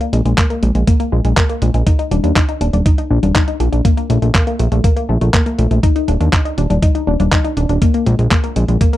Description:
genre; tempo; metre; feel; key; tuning
italo disco; 121 BPM; 4/4; straight; unclear; A4 = 440 Hz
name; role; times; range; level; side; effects
analog pluck; arpeggios; 0.0-9.0 s; Ab3 to Eb4; -20 LUFS; left 3 dB; chorus, phaser, tape echo
dusty soul sampler-style drum kit; drums; 0.0-9.0 s; congas, handclaps, hi-hat; -20 LUFS; equal; none
fat analog bass; bass; 0.1-8.8 s; Eb1 to Eb2; -15 LUFS; equal; none
electronic kick drum; drums; 0.4-8.9 s; none; -14 LUFS; equal; none
room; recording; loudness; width
little or no reverb; dry, close 1970s-style studio recording; -12 LUFS; side -14 dB against mid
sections
0.0-9.0 A section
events
none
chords
0.0 Absus2/Bb; 1.9 Eb5; 3.9 N.C.; 7.8 Absus2/Bb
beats
0.38 0.87 1.37 | 1.87 2.36 2.86 3.35 | 3.85 4.35 4.84 5.34 | 5.83 6.33 6.83 7.32 | 7.82 8.31 8.81

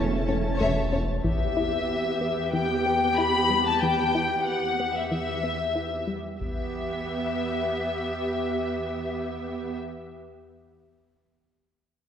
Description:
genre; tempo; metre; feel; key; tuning
cinematic, hybrid orchestral and electronic film score; 93 BPM; 4/4; straight; E dorian; A4 = 440 Hz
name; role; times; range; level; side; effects
rich symphonic violin section; melody; 0.0-9.7 s; E5 to B5; -28 LUFS; left 4 dB; none
warm symphonic violin section; second line; 0.0-1.0 s; A4 to E5; -31 LUFS; left 2 dB; none
warm studio viola section; accompaniment; 0.0-9.7 s; A3 to G4; -30 LUFS; right 2 dB; none
mellow trombone section; sustained chords; 0.0-0.9 s; E3 to C#4; -36 LUFS; right 3 dB; none
warm French horn section; sustained chords; 0.0-0.6 s; C#3; -40 LUFS; left 2 dB; none
soft round pluck; arpeggios; 0.0-6.3 s; E3 to E4; -32 LUFS; left 2 dB; chorus
clear symphonic double bass section; bass; 0.0-1.0 s; E2; -36 LUFS; right 2 dB; none
mellow tuba; bass; 0.0-1.1 s; E1; -35 LUFS; right 2 dB; none
soft dub sub bass; bass; 0.0-1.2 s; E1; -31 LUFS; equal; none
warm symphonic cello section; bass; 0.0-9.7 s; E2 to C#4; -37 LUFS; right 1 dB; none
taiko ensemble; drums; 0.6-2.5, 6.4-7.7 s; none; -33 LUFS; equal; none
room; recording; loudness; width
wet scoring stage reverb, RT60 2.0 s; recorded in a church or concert hall; -24 LUFS; side -8 dB against mid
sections
0.0-1.2 A section; 1.2-6.4 B section; 6.4-9.0 C section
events
none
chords
0.0 A/E; 1.2 Em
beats
0.60 | 1.24 1.89 2.54 3.18 | 3.83 4.47 5.12 5.76 | 6.41 7.05 7.70 8.34

